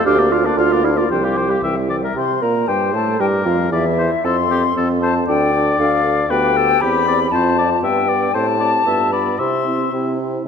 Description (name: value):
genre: quick classical-period movement for wind quintet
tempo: 116 BPM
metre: 2/4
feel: straight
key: C major from 6.3 s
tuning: A4 = 441 Hz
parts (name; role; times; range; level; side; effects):
- concert flute; melody; 0.0-9.9 s; D5 to C6; -20 LUFS; left 7 dB; none
- warm oboe; second line; 0.0-10.2 s; G4 to F5; -22 LUFS; left 4 dB; none
- clear French horn; accompaniment; 0.0-10.5 s; E3 to D4; -24 LUFS; equal; none
- mellow clarinet; accompaniment; 0.1-10.5 s; D4 to C5; -23 LUFS; right 5 dB; none
- warm bassoon; bass; 0.1-10.4 s; C2 to C3; -20 LUFS; right 2 dB; none
room: wet concert hall reverb, RT60 1.7 s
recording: none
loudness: -14 LUFS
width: side -6 dB against mid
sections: 0.0-2.2 A section; 2.2-10.5 B section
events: none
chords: 0.1 Bb/D; 1.1 Csus4; 1.6 C; 2.2 Gmadd11; 3.2 Dmadd9 (rootless); 4.2 F; 5.3 Dm; 6.3 G/D; 6.8 C/E; 7.3 F; 7.8 G; 8.3 Am7; 8.9 G9; 9.4 C